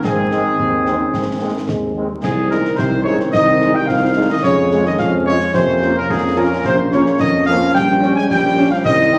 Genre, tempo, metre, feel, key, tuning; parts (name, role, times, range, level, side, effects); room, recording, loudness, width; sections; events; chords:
military-style march for wind band; 109 BPM; 2/4; straight; Ab major; A4 = 440 Hz
bright trumpet section; melody; 0.0-9.2 s; Ab4 to Ab5; -21 LUFS; equal
mellow euphonium; second line; 0.0-9.2 s; Ab2 to Eb4; -26 LUFS; equal
mellow woodwind section; second line; 0.0-9.2 s; C4 to Ab5; -26 LUFS; equal
bright trombone section; sustained chords; 0.0-9.2 s; Eb3 to Db4; -23 LUFS; equal
mellow tuba; bass; 0.0-9.2 s; Bb1 to Ab2; -23 LUFS; equal
concert snare drum, concert bass drum and clash cymbals; drums; 0.0-9.2 s; -29 LUFS; equal
warm French horn section; accompaniment; 0.3-9.2 s; Eb3 to G4; -25 LUFS; equal
wet large studio reverb, RT60 1.2 s; vinyl crackle; -16 LUFS; mono
0.0-2.2 A section; 2.2-9.2 B section
0.0 Ab; 2.2 Ab/C; 4.4 Db/F; 5.5 Bbm/F; 6.6 Bbm; 7.7 Gdim/Bb